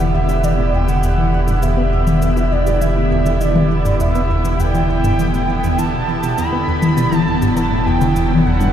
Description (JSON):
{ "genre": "ambient, sequencer-driven space music", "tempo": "101 BPM", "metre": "4/4", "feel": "straight", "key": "E minor", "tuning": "A4 = 445 Hz", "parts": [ { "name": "pulse-width lead", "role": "melody", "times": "0.0-8.7 s", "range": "D5 to B5", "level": "-22 LUFS", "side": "right 2 dB", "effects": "chorus, ping-pong delay" }, { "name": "evolving wavetable pad", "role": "sustained chords", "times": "0.0-8.7 s", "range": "D3 to G4", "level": "-20 LUFS", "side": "equal", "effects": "ensemble chorus, built-in reverb" }, { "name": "tight sequenced synth", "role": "riff", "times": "0.0-8.7 s", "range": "E2 to B3", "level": "-20 LUFS", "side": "left 1 dB", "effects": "chorus, phaser, ping-pong delay" }, { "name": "warm sub bass", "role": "bass", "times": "0.0-8.7 s", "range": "E1", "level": "-20 LUFS", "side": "equal", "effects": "none" }, { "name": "electronic cabasa and toms", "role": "percussion", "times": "0.3-8.7 s", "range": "none", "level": "-23 LUFS", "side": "left 2 dB", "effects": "overdrive" } ], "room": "moderate shimmer reverb, RT60 9.6 s", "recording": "played on a big sound system in a bare room, large studio reverb", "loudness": "-14 LUFS", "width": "side -10 dB against mid", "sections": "0.0-8.7 A section", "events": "none", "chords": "0.0 Emadd9" }